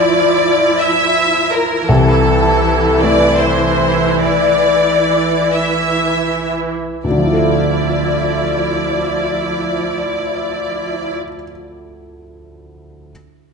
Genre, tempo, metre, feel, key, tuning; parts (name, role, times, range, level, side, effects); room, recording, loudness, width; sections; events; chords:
cinematic, emotional film score for orchestra; 38-58 BPM (dotted quarters); 6/8; rubato; D minor; A4 = 440 Hz
clear studio violin section; second line; 0.0-11.2 s; A4 to E5; -16 LUFS; left 3 dB
felt-muted upright piano; accompaniment; 0.0-13.1 s; C2 to E5; -19 LUFS; left 1 dB
rich studio viola section; accompaniment; 0.0-11.2 s; E3 to E4; -18 LUFS; right 3 dB
wet scoring stage reverb, RT60 1.9 s; dark, warm production, nothing above 10.8 kHz; -12 LUFS; side -5 dB against mid
0.0-7.0 A section; 7.0-13.1 B section
slowing down 0.8-7.0
0.0 Dmadd9; 1.9 Am/C; 7.0 Dmadd9